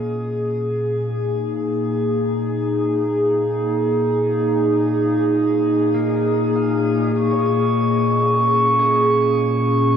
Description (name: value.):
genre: ambient.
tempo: free time.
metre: none.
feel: none.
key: Bb minor.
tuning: A4 = 440 Hz.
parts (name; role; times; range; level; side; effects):
warbly tape-like pad; sustained chords; 0.0-10.0 s; Bb2 to Ab4; -17 LUFS; equal; chorus, built-in reverb, shimmer reverb.
concert harp; arpeggios; 0.0-10.0 s; Bb3 to F5; -36 LUFS; left 2 dB; tape echo, shimmer reverb.
glass harmonica; texture; 7.1-10.0 s; Db6; -19 LUFS; right 1 dB; shimmer reverb.
room: wet lush hall reverb, RT60 2.7 s.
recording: worn, warbling old tape, cassette tape, warbly pitch drift.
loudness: -17 LUFS.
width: side -8 dB against mid.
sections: 0.0-7.1 A section; 7.1-10.0 B section.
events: fade-out on harp 0.0-7.1; filter sweep on ambient pad 0.0-7.1.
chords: 0.0 Bbm7.